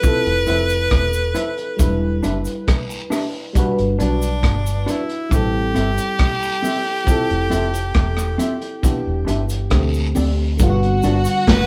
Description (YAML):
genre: lovers rock reggae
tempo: 68 BPM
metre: 4/4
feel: straight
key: G major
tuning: A4 = 439 Hz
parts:
  - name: bright tenor saxophone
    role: melody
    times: 0.0-11.7 s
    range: D4 to B4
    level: -26 LUFS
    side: equal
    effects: none
  - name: FM electric piano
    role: accompaniment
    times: 0.0-11.7 s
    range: D3 to B4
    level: -26 LUFS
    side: equal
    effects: chorus, tape echo
  - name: crunchy breakbeat drum kit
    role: drums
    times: 0.0-11.7 s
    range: hi-hat, kick drum, rim click, snare drum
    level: -22 LUFS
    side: equal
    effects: none
  - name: cabasa and guiro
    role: percussion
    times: 0.0-11.5 s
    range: none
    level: -38 LUFS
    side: equal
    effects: tape echo
  - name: vintage muted fingered electric bass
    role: bass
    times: 0.3-11.7 s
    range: E1 to D2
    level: -24 LUFS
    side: equal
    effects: none
  - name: mellow electric guitar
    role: stabs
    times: 0.5-11.2 s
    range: C4 to E5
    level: -28 LUFS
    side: equal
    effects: tape echo
  - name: warm studio string section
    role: second line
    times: 10.6-11.7 s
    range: F#4 to F#5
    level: -25 LUFS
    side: equal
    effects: none
room: wet small room ambience, RT60 0.5 s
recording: band playing live in one room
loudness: -19 LUFS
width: mono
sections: 0.0-10.6 A section; 10.6-11.7 B section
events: none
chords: 0.0 Fmaj7; 1.8 Em7; 3.6 Gmaj7; 5.3 Am7; 7.1 Fmaj7; 8.8 Em7; 9.7 D7sus4; 10.6 Gmaj7